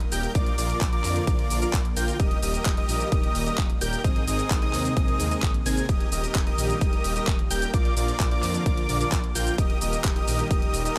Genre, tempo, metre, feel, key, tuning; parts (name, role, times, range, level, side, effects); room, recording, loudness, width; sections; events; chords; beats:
EDM, festival progressive house; 130 BPM; 4/4; straight; Eb major; A4 = 440 Hz
lush unison pad; sustained chords; 0.0-11.0 s; C3 to Bb3; -37 LUFS; equal; chorus, phaser, sidechain pumping
detuned saw bass; bass; 0.0-10.9 s; Eb1 to F2; -32 LUFS; equal; chorus, sidechain pumping
pop drum kit; drums; 0.0-10.9 s; handclaps, hi-hat, shaker; -34 LUFS; equal; overdrive
unison lead; arpeggios; 0.1-11.0 s; D6 to Ab6; -34 LUFS; equal; lush chorus, sidechain pumping, digital delay
dense compressed supersaw; riff; 0.1-11.0 s; C4 to Ab5; -33 LUFS; equal; sidechain pumping, digital delay
electronic kick drum; drums; 0.4-10.6 s; -27 LUFS; equal; overdrive
digital ambience; -24 LUFS; mono
0.0-11.0 A section
0.4 Bb; 2.2 Eb; 4.0 Abadd9; 5.9 Eb; 7.7 Bb; 9.6 Eb
| 0.35 0.81 1.27 1.74 | 2.20 2.66 3.12 3.58 | 4.04 4.51 4.97 5.43 | 5.89 6.35 6.81 7.28 | 7.74 8.20 8.66 9.12 | 9.58 10.04 10.51 10.97